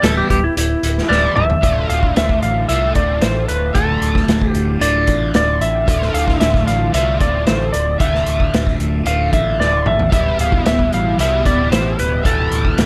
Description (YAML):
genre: psychedelic rock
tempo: 113 BPM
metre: 4/4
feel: straight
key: D dorian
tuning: A4 = 440 Hz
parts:
  - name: clean lap steel guitar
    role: melody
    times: 0.0-12.9 s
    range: E4 to F5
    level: -21 LUFS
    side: equal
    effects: tape echo
  - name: tonewheel organ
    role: sustained chords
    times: 0.0-12.9 s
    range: G3 to A4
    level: -35 LUFS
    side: equal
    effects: none
  - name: crunchy overdriven guitar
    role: riff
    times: 0.0-12.9 s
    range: D2 to F4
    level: -23 LUFS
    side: equal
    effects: flanger
  - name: fingered electric bass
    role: bass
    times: 0.0-12.9 s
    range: D1 to C2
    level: -22 LUFS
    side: equal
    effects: none
  - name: vintage drum kit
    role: drums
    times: 0.0-12.9 s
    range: hi-hat, kick drum, snare drum, toms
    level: -22 LUFS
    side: equal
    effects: none
room: small room ambience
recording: none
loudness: -16 LUFS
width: mono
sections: 0.0-1.6 A section; 1.6-12.9 B section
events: electric slide guitar solo 0.0-1.6; drum fill 1.1-1.6, 9.6-10.1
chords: 0.0 Em/D; 1.6 Dm; 10.1 Em/D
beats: 0.03 0.56 1.09 | 1.62 2.15 2.69 3.22 | 3.75 4.28 4.81 5.34 | 5.87 6.41 6.94 7.47 | 8.00 8.53 9.06 9.59 | 10.12 10.65 11.19 11.71 | 12.25 12.78